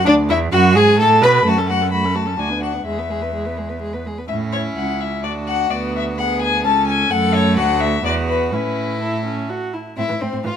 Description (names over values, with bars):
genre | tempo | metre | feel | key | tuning
quick classical-period movement for string quartet | 127 BPM | 3/4 | straight | A major | A4 = 440 Hz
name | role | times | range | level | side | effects
dark violin | melody | 0.0-10.6 s | A4 to B5 | -20 LUFS | left 6 dB | none
warm viola | accompaniment | 0.0-10.5 s | E3 to B4 | -21 LUFS | right 2 dB | none
rich cello | bass | 0.0-10.5 s | C#2 to B2 | -21 LUFS | right 4 dB | none
rich violin | second line | 0.1-10.5 s | C4 to B4 | -24 LUFS | left 3 dB | none
room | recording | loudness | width
moderate stone room reverb, RT60 1.3 s | close, detailed microphones | -16 LUFS | side -8 dB against mid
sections
0.0-10.0 A section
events
none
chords
0.1 E7/D; 1.0 Asus2; 1.5 F#m; 2.4 Bm/D; 2.9 E; 4.3 A; 5.2 D; 5.7 E9/D (rootless); 6.7 A/C#; 7.1 F#m; 7.6 Dadd9; 8.0 E5; 8.5 A; 10.0 Am